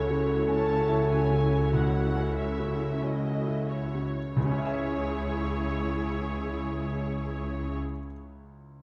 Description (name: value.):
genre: cinematic, emotional film score for orchestra.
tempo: 44-51 BPM.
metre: 4/4.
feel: rubato.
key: C# minor.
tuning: A4 = 441 Hz.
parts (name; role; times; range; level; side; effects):
muted symphonic violin section; melody; 0.0-7.8 s; C#5 to A5; -41 LUFS; equal; none.
muted symphonic violin section; second line; 0.0-7.8 s; C#5; -44 LUFS; equal; none.
bright grand piano; accompaniment; 0.0-8.8 s; C#2 to E5; -35 LUFS; equal; none.
muted studio viola section; accompaniment; 0.0-7.8 s; E4 to G#4; -38 LUFS; equal; none.
dark French horn section; sustained chords; 0.0-7.8 s; G#3 to A4; -35 LUFS; equal; none.
muted symphonic cello section; bass; 0.0-7.8 s; C#3; -39 LUFS; equal; none.
muted symphonic double bass section; bass; 0.0-7.8 s; C#2; -35 LUFS; equal; none.
concert harp; arpeggios; 4.4-8.3 s; C#3 to E5; -41 LUFS; equal; none.
timpani; percussion; 4.4-7.8 s; C#3; -36 LUFS; equal; none.
room: moderate scoring stage reverb, RT60 1.9 s.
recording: dark, warm production.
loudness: -28 LUFS.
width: mono.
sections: 0.0-4.4 A section; 4.4-8.8 B section.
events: slowing down 0.0-4.4.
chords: 0.0 F#m7/C#; 4.4 C#m.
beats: 0.50 1.74 3.02 | 4.36 5.67 6.99 8.33.